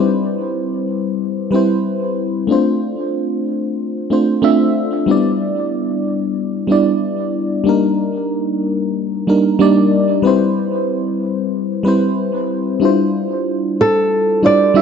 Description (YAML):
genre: chillout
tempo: 93 BPM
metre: 4/4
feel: swing 56% on 16ths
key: D dorian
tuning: A4 = 440 Hz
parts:
  - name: mellow FM electric piano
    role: accompaniment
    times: 0.0-14.8 s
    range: G3 to E5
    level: -15 LUFS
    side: moving between left 5 dB and right 3 dB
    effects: chorus, auto-pan, tape echo
  - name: nylon-string guitar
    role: melody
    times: 13.8-14.8 s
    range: A4 to D5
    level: -12 LUFS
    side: right 2 dB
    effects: none
room: moderate plate reverb, RT60 2.7 s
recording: nothing above 8.0 kHz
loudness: -14 LUFS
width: side -6 dB against mid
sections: 0.0-12.8 A section; 12.8-14.8 B section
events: none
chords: 0.0 Cmaj7; 2.5 Dm7; 5.1 Em7; 7.7 Ebmaj7; 10.2 Cmaj7; 12.8 Dm11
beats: 0.57 1.21 1.86 | 2.50 3.15 3.79 4.44 | 5.08 5.73 6.37 7.02 | 7.66 8.31 8.95 9.60 | 10.24 10.89 11.54 12.18 | 12.82 13.47 14.12 14.76